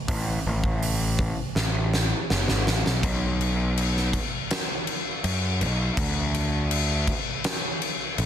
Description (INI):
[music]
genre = rock, shoegaze and dream pop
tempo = 82 BPM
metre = 4/4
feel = straight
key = unclear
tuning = A4 = 439 Hz
[part]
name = fuzz picked electric bass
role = bass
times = 0.1-8.3 s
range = F#1 to F#2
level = -24 LUFS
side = equal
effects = overdrive
[part]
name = huge arena drum kit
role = drums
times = 0.1-8.3 s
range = crash cymbal, hi-hat, kick drum, snare drum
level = -26 LUFS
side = left 1 dB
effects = none
[sound]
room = little or no reverb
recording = dense, heavily limited modern master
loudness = -23 LUFS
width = side -10 dB against mid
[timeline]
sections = 0.0-3.0 A section; 3.0-8.3 B section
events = drum fill 1.6-3.0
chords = none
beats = | 0.08 0.82 1.55 2.29 | 3.02 3.76 4.49 5.23 | 5.96 6.70 7.43 8.17